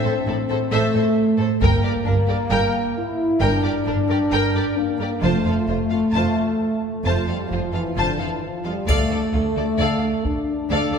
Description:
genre	cinematic, epic orchestral film score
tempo	66 BPM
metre	4/4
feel	straight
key	unclear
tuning	A4 = 440 Hz
part	warm symphonic violin section	melody	0.0-11.0 s	A4 to A5	-29 LUFS	left 3 dB	none
part	rich symphonic violin section	second line	0.0-11.0 s	D4 to D5	-30 LUFS	left 3 dB	none
part	rich symphonic viola section	accompaniment	0.0-11.0 s	F4 to Bb4	-30 LUFS	right 1 dB	none
part	mellow French horn section	sustained chords	0.0-11.0 s	D3 to E4	-22 LUFS	left 1 dB	none
part	clear symphonic cello section	bass	0.0-11.0 s	D2 to A2	-27 LUFS	right 2 dB	none
part	rich symphonic double bass section	bass	0.3-10.8 s	F1 to D2	-26 LUFS	right 2 dB	none
part	taiko ensemble	drums	1.6-3.4, 8.9-10.7 s	none	-25 LUFS	equal	none
part	triangle	percussion	8.9-10.7 s	none	-41 LUFS	left 1 dB	none
room	wet concert hall reverb, RT60 2.2 s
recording	recorded in a church or concert hall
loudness	-18 LUFS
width	side -6 dB against mid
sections	0.0-11.0 A section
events	none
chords	0.0 Am; 1.6 Gm; 5.2 F; 8.9 Dm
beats	0.72 | 1.62 2.51 3.41 4.32 | 5.22 6.14 7.05 7.97 | 8.88 9.79 10.71

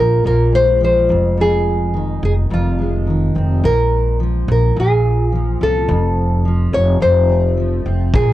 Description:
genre	acoustic pop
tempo	106 BPM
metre	4/4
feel	swing 60% on 16ths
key	unclear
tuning	A4 = 440 Hz
part	nylon-string guitar	melody	0.0-8.3 s	F4 to Db5	-17 LUFS	left 1 dB	cassette tape
part	fingerpicked steel-string acoustic guitar	accompaniment	0.0-8.3 s	F2 to F4	-20 LUFS	equal	double-tracked left and right, cassette tape
part	upright bass	bass	0.0-8.3 s	F1 to C2	-16 LUFS	equal	tube saturation
part	kick drum	drums	8.1-8.3 s	none	-14 LUFS	equal	none
room	little or no reverb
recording	home recording on cassette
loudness	-13 LUFS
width	side -14 dB against mid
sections	0.0-8.3 A section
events	none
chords	0.0 Bb5; 1.1 Fm7; 3.6 Bbm7; 5.9 F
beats	0.26 0.82 | 1.38 1.95 2.51 3.07 | 3.64 4.20 4.76 5.33 | 5.89 6.45 7.01 7.58 | 8.14

